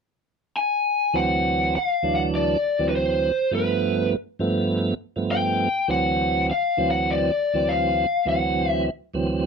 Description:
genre	blues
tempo	101 BPM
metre	4/4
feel	swing 56% on 16ths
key	D mixolydian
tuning	A4 = 439 Hz
part	lead guitar through a small cranked amp	melody	0.6-8.8 s	B4 to G#5	-22 LUFS	left 2 dB	overdrive
part	tonewheel organ	accompaniment	1.1-9.5 s	D2 to D4	-23 LUFS	right 3 dB	slow rotary speaker, overdrive
room	light reverb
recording	dry, close 1970s-style studio recording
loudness	-20 LUFS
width	side -6 dB against mid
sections	0.0-1.1 A section; 1.1-9.5 B section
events	none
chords	0.0 N.C.; 1.1 D7; 3.5 G7; 5.9 D7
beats	0.55 | 1.15 1.74 2.33 2.92 | 3.52 4.11 4.70 5.30 | 5.89 6.48 7.07 7.67 | 8.26 8.85 9.44

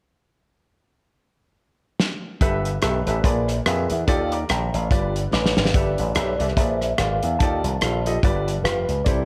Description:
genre	uptempo gospel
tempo	144 BPM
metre	4/4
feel	swing 58% on 8ths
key	unclear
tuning	A4 = 439 Hz
part	warm soul drum kit	drums	2.0-9.2 s	hi-hat, kick drum, rim click, snare drum	-25 LUFS	equal	none
part	warm baby grand piano	accompaniment	2.4-9.2 s	G2 to D6	-28 LUFS	equal	none
part	slap bass with an envelope filter	bass	2.4-9.2 s	F1 to F2	-26 LUFS	equal	none
part	mellow tine electric piano	melody	5.3-9.2 s	B4 to A5	-30 LUFS	equal	tape echo
room	moderate plate reverb, RT60 1.6 s, small room ambience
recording	dreamy mix soaked in reverb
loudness	-22 LUFS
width	mono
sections	0.7-2.4 A section; 2.4-5.7 B section; 5.7-9.2 C section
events	drum fill 2.0-2.4, 5.3-5.7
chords	0.7 N.C.; 2.4 G69; 3.2 Bb7b9; 4.1 Ebmaj9#11; 4.9 G7; 5.7 G69; 6.6 Bb7b9; 7.4 Ebmaj9#11; 8.2 G7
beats	| 0.75 1.16 1.58 2.00 | 2.41 2.83 3.25 3.66 | 4.08 4.50 4.91 5.33 | 5.74 6.16 6.58 6.99 | 7.41 7.82 8.24 8.65 | 9.07

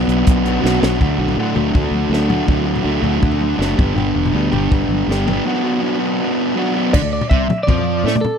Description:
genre	indie rock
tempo	162 BPM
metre	4/4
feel	straight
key	D major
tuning	A4 = 440 Hz
part	fuzz guitar	riff	0.0-8.1 s	G2 to G4	-17 LUFS	equal	distortion
part	fingered electric bass	bass	0.0-8.1 s	E1 to A2	-20 LUFS	equal	none
part	compact cocktail drum kit	drums	0.1-8.3 s	crash cymbal, hi-hat, kick drum, snare drum, toms	-19 LUFS	left 1 dB	none
part	clean electric guitar	melody	6.9-8.4 s	A4 to E5	-21 LUFS	right 1 dB	spring reverb, slapback echo
room	little or no reverb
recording	dry, close 1970s-style studio recording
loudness	-14 LUFS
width	side -7 dB against mid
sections	0.0-1.0 A section; 1.0-6.9 B section; 6.9-8.4 C section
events	drum fill 0.6-1.0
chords	0.0 Bm; 1.0 D; 3.8 G; 5.5 Bm; 6.9 D5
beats	0.27 0.64 | 1.01 1.38 1.75 2.12 | 2.49 2.86 3.23 3.60 | 3.97 4.34 4.71 5.09 | 5.46 5.83 6.20 6.57 | 6.94 7.32 7.69 8.06

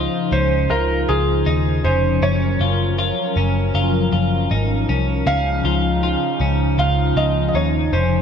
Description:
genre	dream pop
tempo	79 BPM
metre	4/4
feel	straight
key	Db major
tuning	A4 = 440 Hz
part	felt-muted upright piano	melody	0.0-8.2 s	Ab4 to F5	-23 LUFS	right 2 dB	ping-pong delay
part	hollow soft pad	sustained chords	0.0-8.2 s	Db3 to C5	-22 LUFS	left 1 dB	chorus
part	twelve-string electric guitar	arpeggios	0.0-8.2 s	Db4 to F4	-24 LUFS	left 3 dB	lush chorus, ping-pong delay
part	vintage muted picked electric bass	bass	0.0-8.2 s	F1 to Eb2	-20 LUFS	equal	none
room	moderate lush hall reverb, RT60 2.8 s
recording	dark, warm production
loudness	-16 LUFS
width	side -7 dB against mid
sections	0.0-8.2 A section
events	none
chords	0.0 Dbmaj9; 2.2 Gbmaj7; 5.3 Dbadd9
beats	0.71 1.47 | 2.23 2.99 3.75 4.51 | 5.26 6.03 6.78 7.54

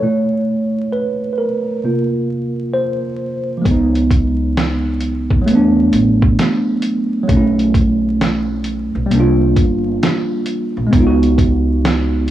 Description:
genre	lo-fi hip hop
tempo	66 BPM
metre	4/4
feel	swing 65% on 16ths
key	unclear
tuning	A4 = 440 Hz
part	tine electric piano	accompaniment	0.0-12.3 s	Cb3 to Db5	-15 LUFS	right 1 dB	medium stereo tremolo, cassette tape, low-pass filter
part	upright bass	bass	3.7-12.3 s	G1 to E2	-19 LUFS	equal	none
part	lo-fi sampler-style drum kit	drums	3.7-12.3 s	hi-hat, kick drum, snare drum	-17 LUFS	equal	none
room	light reverb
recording	dry, gritty hardware recording, vinyl crackle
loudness	-13 LUFS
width	side -12 dB against mid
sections	0.0-3.7 A section; 3.7-12.3 B section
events	tine electric piano solo 0.0-3.7; filter sweep on tine electric piano 0.0-3.7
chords	0.0 Cb9sus4; 1.8 C7sus4; 3.7 Db9sus4; 5.5 E9sus4; 7.3 Cb9sus4; 9.1 C9sus4; 10.9 Db9sus4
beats	| 0.02 0.93 1.83 2.74 | 3.65 4.56 5.47 6.38 | 7.29 8.20 9.11 10.02 | 10.93 11.84

